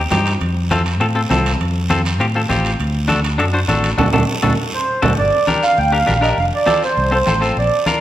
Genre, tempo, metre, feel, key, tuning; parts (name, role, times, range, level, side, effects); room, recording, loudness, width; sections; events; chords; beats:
latin, cumbia; 201 BPM; 4/4; straight; A4 = 440 Hz
fingered electric bass; bass; 0.0-7.7 s; F1 to A2; -19 LUFS; equal
clean electric guitar; accompaniment; 0.1-8.0 s; C4 to C5; -19 LUFS; left 2 dB
congas; percussion; 0.1-8.0 s; -24 LUFS; right 1 dB
guiro; percussion; 0.1-8.0 s; -28 LUFS; right 3 dB
timbales; percussion; 0.1-5.1 s; -27 LUFS; right 5 dB
accordion; melody; 4.7-7.9 s; C5 to G5; -16 LUFS; right 2 dB; light tremolo tuning
wet recital hall reverb, RT60 1.8 s; -14 LUFS; side -12 dB against mid
0.0-5.2 A section; 5.2-8.0 B section
band accent 4.0-5.2; drum fill 4.3-5.2
0.4 F; 2.8 D; 5.2 Gm; 6.4 F
0.11 | 0.41 0.71 1.00 1.30 | 1.60 1.90 2.20 2.50 | 2.79 3.09 3.39 3.69 | 3.99 4.29 4.58 4.88 | 5.18 5.48 5.78 6.08 | 6.37 6.67 6.97 7.27 | 7.57 7.87